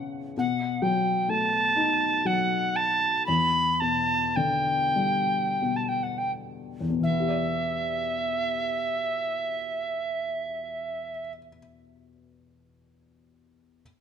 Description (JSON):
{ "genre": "celtic folk, Celtic slow air", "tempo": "40-68 BPM", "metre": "3/4", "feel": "rubato", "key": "E minor", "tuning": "A4 = 441 Hz", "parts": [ { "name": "felt-muted upright piano", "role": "accompaniment", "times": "0.0-13.8 s", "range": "E2 to D5", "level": "-29 LUFS", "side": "left 5 dB", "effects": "none" }, { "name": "wooden whistle", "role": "melody", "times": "0.4-11.3 s", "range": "E5 to B5", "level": "-25 LUFS", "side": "right 2 dB", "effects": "none" } ], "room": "moderate recital hall reverb, RT60 1.6 s", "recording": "none", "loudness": "-24 LUFS", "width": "side -8 dB against mid", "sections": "0.0-7.0 A section; 7.0-11.3 B section", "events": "slowing down 0.3-7.0", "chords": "0.3 B7; 3.3 Em7" }